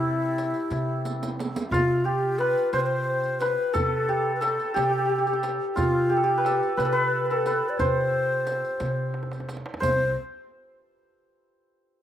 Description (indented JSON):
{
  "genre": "Persian modal ensemble",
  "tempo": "59 BPM (dotted quarters)",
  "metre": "6/8",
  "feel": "straight",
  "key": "C dastgah mahur",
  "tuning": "A4 = 440 Hz",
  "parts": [
    { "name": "santur", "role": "melody", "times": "0.0-10.2 s", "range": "E4 to C5", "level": "-26 LUFS", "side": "equal", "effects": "slapback echo" },
    { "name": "breathy ney", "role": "second line", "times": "0.0-10.1 s", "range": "E4 to D5", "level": "-27 LUFS", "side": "left 2 dB", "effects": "slapback echo" },
    { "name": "upright bass", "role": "bass", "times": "0.0-10.1 s", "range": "C2 to C3", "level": "-30 LUFS", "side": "right 1 dB", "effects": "none" },
    { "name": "riq", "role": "percussion", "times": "0.4-10.1 s", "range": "none", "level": "-37 LUFS", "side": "right 4 dB", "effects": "none" },
    { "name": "tombak", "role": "percussion", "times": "0.4-10.1 s", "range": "none", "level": "-36 LUFS", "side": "right 1 dB", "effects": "none" }
  ],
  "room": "little or no reverb",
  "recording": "recorded outdoors, with no room sound",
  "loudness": "-22 LUFS",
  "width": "side -10 dB against mid",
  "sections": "0.0-9.8 A section; 9.8-11.8 B section",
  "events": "drum fill 1.0-1.7, 9.1-9.8",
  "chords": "none"
}